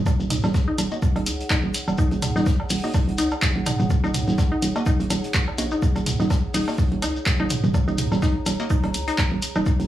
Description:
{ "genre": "minimal techno", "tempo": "125 BPM", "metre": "4/4", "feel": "swing 56% on 16ths", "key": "Eb minor", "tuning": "A4 = 440 Hz", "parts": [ { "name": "hollow knocking FM bass", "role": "bass", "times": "0.0-9.9 s", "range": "Eb1 to Eb2", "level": "-24 LUFS", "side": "right 1 dB", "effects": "sidechain pumping" }, { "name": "warbly tape-like pad", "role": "texture", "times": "0.0-9.9 s", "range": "Eb4 to Bb5", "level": "-34 LUFS", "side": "equal", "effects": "chorus, built-in reverb, sidechain pumping" }, { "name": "electronic kick drum", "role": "drums", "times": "0.1-9.8 s", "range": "none", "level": "-22 LUFS", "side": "equal", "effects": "overdrive" }, { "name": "vintage drum kit", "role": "drums", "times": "0.1-9.9 s", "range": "hi-hat, shaker, snare drum", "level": "-39 LUFS", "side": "right 2 dB", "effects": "sidechain pumping on hats, high-pass filter on hats, high-pass filter on snare, sidechain pumping on perc, high-pass filter on perc, high-pass filter on room" }, { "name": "electronic woodblock and toms", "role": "percussion", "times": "0.1-9.6 s", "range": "none", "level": "-29 LUFS", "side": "right 1 dB", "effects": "analog delay" }, { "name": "shekere", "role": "percussion", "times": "0.1-9.9 s", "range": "none", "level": "-34 LUFS", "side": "left 4 dB", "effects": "none" }, { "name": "resonant blip pluck", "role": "riff", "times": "0.3-9.6 s", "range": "Eb4 to Gb4", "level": "-29 LUFS", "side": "left 1 dB", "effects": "chorus, sidechain pumping, tape echo" }, { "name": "punchy analog drum machine", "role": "drums", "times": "0.3-9.5 s", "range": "handclaps, hi-hat", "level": "-26 LUFS", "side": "right 1 dB", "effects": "overdrive" }, { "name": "wavetable chord stab", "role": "stabs", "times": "0.9-8.7 s", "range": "Bb3 to Eb5", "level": "-32 LUFS", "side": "equal", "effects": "analog delay" } ], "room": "small room ambience", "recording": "dry, gritty hardware recording, studio reverb", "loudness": "-20 LUFS", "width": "side -13 dB against mid", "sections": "0.0-9.9 A section", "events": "none", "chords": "0.0 Ebm" }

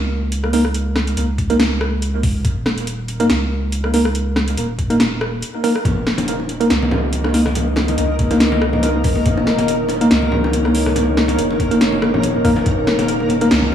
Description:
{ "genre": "deep dubstep", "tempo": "141 BPM", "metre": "4/4", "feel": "swing 55% on 16ths, half-time", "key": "unclear", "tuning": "A4 = 440 Hz", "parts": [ { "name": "soft dub sub bass", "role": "bass", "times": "0.0-13.7 s", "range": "Eb1 to Db2", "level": "-22 LUFS", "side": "right 1 dB", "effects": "none" }, { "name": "deep house drum kit", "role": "drums", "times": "0.3-13.6 s", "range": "hi-hat, rim click, snare drum", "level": "-20 LUFS", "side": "equal", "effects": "overdrive" }, { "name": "tine electric piano", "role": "stabs", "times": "0.5-13.5 s", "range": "Bb3 to Bb4", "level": "-20 LUFS", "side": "right 1 dB", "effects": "overdrive, fast stereo tremolo, dub echo" }, { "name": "electronic kick drum", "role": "drums", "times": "1.4-12.8 s", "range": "none", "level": "-20 LUFS", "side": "equal", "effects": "none" }, { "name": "deep dark ambient pad", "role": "sustained chords", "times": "6.9-13.7 s", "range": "Eb4 to Eb5", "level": "-21 LUFS", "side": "left 1 dB", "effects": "chorus, built-in reverb" }, { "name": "bongos and congas", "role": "percussion", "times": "5.8-13.7 s", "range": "none", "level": "-21 LUFS", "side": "left 2 dB", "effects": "dub echo" }, { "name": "backwards swelling texture", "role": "texture", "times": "7.2-13.7 s", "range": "Bb3 to Bb4", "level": "-24 LUFS", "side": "equal", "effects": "built-in reverb" } ], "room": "moderate plate reverb, RT60 1.7 s, digital ambience", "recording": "dreamy mix soaked in reverb, vinyl crackle, small room ambience", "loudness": "-15 LUFS", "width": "side -9 dB against mid", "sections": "0.0-13.7 A section", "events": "none", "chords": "0.0 Eb5" }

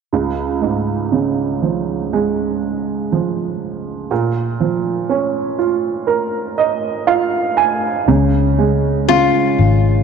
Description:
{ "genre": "pop", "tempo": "60 BPM", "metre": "4/4", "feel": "straight", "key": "Db major", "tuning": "A4 = 441 Hz", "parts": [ { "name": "dark upright piano", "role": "accompaniment", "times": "0.1-10.0 s", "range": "Db2 to Ab5", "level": "-16 LUFS", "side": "right 6 dB", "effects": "none" }, { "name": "vintage muted fingered electric bass", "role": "bass", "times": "8.1-10.0 s", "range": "Ab1 to Db2", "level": "-14 LUFS", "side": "left 3 dB", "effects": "none" }, { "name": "nylon-string guitar", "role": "melody", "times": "9.1-10.0 s", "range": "F4", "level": "-15 LUFS", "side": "left 10 dB", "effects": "none" } ], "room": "moderate plate reverb, RT60 2.7 s", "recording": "1960s-style stereo with parts hard left and right", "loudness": "-15 LUFS", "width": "side -6 dB against mid", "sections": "0.1-8.1 A section; 8.1-10.0 B section", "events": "upright piano fill 6.1-8.1", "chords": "0.1 Db; 4.1 Bbm; 8.1 Db" }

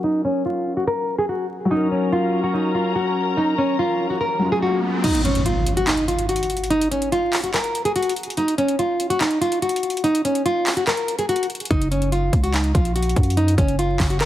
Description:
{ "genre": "hip hop, trap", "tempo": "144 BPM", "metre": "4/4", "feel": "half-time", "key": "F# major", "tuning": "A4 = 440 Hz", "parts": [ { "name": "nylon-string guitar", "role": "melody", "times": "0.0-14.3 s", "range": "C#4 to A#4", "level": "-20 LUFS", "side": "equal", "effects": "low-pass filter, digital delay" }, { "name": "felt-muted upright piano", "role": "accompaniment", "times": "0.0-5.1 s", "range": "F#3 to A#4", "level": "-24 LUFS", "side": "left 2 dB", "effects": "low-pass filter" }, { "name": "muted studio string section", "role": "sustained chords", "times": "1.7-5.0 s", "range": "C#4 to A#5", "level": "-27 LUFS", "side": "left 1 dB", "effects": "low-pass filter" }, { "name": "riser and impact", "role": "sound effects", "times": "3.8-6.7 s", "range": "none", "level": "-25 LUFS", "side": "equal", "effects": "none" }, { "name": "trap drum kit", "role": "drums", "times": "5.0-14.3 s", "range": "crash cymbal, handclaps, hi-hat, kick drum", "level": "-24 LUFS", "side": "equal", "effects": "none" }, { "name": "growling 808-style bass", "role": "bass", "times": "11.7-14.3 s", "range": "F#1 to F#2", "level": "-20 LUFS", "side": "equal", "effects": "none" } ], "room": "light reverb, digital ambience", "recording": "dense, heavily limited modern master, vinyl crackle", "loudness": "-18 LUFS", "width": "side -13 dB against mid", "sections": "0.0-5.0 A section; 5.0-14.3 B section", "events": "filter sweep 0.0-5.0; riser 3.8-5.0; kick muted 5.0-11.7; impact 5.0-6.7", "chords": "0.0 F#; 5.0 N.C.; 11.7 F#" }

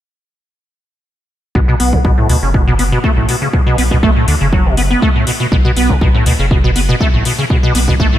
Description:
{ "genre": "acid house", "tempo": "121 BPM", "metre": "4/4", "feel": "straight", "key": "B minor", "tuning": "A4 = 440 Hz", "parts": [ { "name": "acid bass, square", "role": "riff", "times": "1.6-8.2 s", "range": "A2 to B3", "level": "-14 LUFS", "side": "equal", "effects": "ensemble chorus, ping-pong delay" }, { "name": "saturated sub bass", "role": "bass", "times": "1.6-8.1 s", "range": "F#1 to D2", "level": "-16 LUFS", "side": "equal", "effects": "sidechain pumping" }, { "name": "electronic kick drum", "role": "drums", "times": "1.6-8.1 s", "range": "none", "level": "-14 LUFS", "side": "equal", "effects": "none" }, { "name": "electronic hi-hat", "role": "drums", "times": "1.8-7.9 s", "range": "none", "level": "-23 LUFS", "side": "left 4 dB", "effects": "none" } ], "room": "light reverb", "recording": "none", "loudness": "-10 LUFS", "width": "side -12 dB against mid", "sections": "1.6-8.2 A section", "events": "none", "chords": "1.6 B7(no3)" }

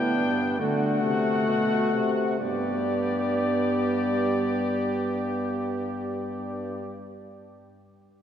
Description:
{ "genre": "classical, imitative canzona for brass ensemble", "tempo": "62-73 BPM", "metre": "4/4", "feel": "straight", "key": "G major", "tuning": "A4 = 440 Hz", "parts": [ { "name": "clear cornet", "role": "melody", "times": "0.0-7.0 s", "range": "D5 to G5", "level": "-31 LUFS", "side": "left 4 dB", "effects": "none" }, { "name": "clear trumpet", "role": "second line", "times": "0.0-7.0 s", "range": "D4 to G4", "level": "-34 LUFS", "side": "right 3 dB", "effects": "none" }, { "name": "warm trombone", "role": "accompaniment", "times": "0.0-7.0 s", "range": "A3 to B3", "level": "-27 LUFS", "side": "equal", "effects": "none" }, { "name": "mellow euphonium", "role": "bass", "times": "0.0-7.0 s", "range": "G2 to D3", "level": "-30 LUFS", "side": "equal", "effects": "none" } ], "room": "wet church reverb, RT60 3.2 s", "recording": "heard from further back in the room", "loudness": "-23 LUFS", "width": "side -9 dB against mid", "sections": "0.0-2.4 A section; 2.4-6.2 B section", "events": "slowing down 0.0-2.4", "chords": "0.0 G; 0.6 D; 2.4 G" }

